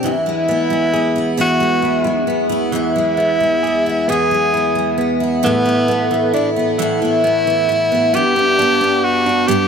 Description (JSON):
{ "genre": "six-eight pop ballad", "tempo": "44 BPM (dotted quarters)", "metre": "6/8", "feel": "straight", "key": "unclear", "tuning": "A4 = 436 Hz", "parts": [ { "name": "picked steel-string acoustic guitar", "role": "accompaniment", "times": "0.0-9.7 s", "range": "E2 to G4", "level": "-18 LUFS", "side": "left 1 dB", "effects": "double-tracked left and right" }, { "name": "direct-recorded clean electric guitar", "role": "arpeggios", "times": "0.0-9.7 s", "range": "E3 to G#4", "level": "-23 LUFS", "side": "right 6 dB", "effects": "none" }, { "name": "clear tenor saxophone", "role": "melody", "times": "0.1-9.7 s", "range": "B3 to G#4", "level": "-17 LUFS", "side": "equal", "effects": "analog delay" } ], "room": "light reverb, small room ambience", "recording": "none", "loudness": "-13 LUFS", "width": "side -6 dB against mid", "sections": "0.0-5.4 A section; 5.4-9.7 B section", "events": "none", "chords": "0.0 E; 5.4 Asus2; 8.1 G" }